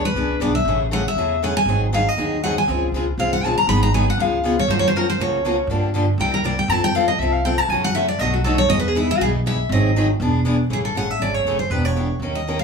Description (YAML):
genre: acoustic string swing (jazz manouche)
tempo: 239 BPM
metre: 4/4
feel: swing 56% on 8ths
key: unclear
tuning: A4 = 438 Hz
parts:
  - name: picked steel-string acoustic guitar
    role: melody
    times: 0.0-12.6 s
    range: E4 to Cb6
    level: -20 LUFS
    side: equal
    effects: none
  - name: upright bass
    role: bass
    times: 0.0-12.6 s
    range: E1 to G2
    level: -22 LUFS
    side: right 1 dB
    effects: none
  - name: picked steel-string acoustic guitar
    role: accompaniment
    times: 0.2-12.6 s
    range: Cb3 to A#4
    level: -23 LUFS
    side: left 2 dB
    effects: none
room: wet small room reverb, RT60 0.5 s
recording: band playing live in one room, small room reverb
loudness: -17 LUFS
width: side -5 dB against mid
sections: 0.0-2.7 A section; 2.7-10.7 A section; 10.7-12.6 B section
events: steel-string acoustic guitar solo 0.0-10.7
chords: 0.0 E7; 0.7 Amaj7; 1.7 G#7; 2.7 Dbmaj7; 3.7 Abm7; 4.2 Db7; 4.7 Gbmaj7; 5.7 Gm7; 6.2 C7; 6.7 Fmaj7; 7.7 Gbm7; 8.2 Cb7; 8.7 Emaj7; 9.7 Ab7; 10.2 E7; 10.7 Amaj7; 11.7 Em7